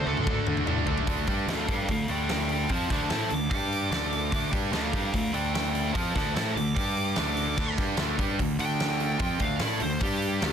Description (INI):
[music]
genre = hard rock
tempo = 148 BPM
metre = 4/4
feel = straight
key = D minor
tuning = A4 = 440 Hz
[part]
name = high-gain lead guitar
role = melody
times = 0.0-10.5 s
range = G4 to D6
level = -32 LUFS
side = equal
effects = distortion, analog delay
[part]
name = cranked stack guitar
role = riff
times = 0.0-10.5 s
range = D3 to A4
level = -33 LUFS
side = left 12 dB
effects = overdrive
[part]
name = tight distorted guitar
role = riff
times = 0.0-10.5 s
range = D3 to A4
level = -32 LUFS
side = right 13 dB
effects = distortion
[part]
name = fuzz picked electric bass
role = bass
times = 0.1-10.5 s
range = D2 to D3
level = -31 LUFS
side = equal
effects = overdrive
[part]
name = huge arena drum kit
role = drums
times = 0.1-10.5 s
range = crash cymbal, hi-hat, kick drum, snare drum, toms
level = -30 LUFS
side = equal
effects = none
[sound]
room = small room ambience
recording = dense, heavily limited modern master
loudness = -25 LUFS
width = side -8 dB against mid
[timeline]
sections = 0.0-1.1 A section; 1.1-10.5 B section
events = drum fill 0.0-1.1; lead electric guitar solo 1.1-10.5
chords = 0.0 D5; 1.1 Dm; 3.5 G5; 3.9 Dm; 6.8 G5; 7.2 Dm; 10.0 G5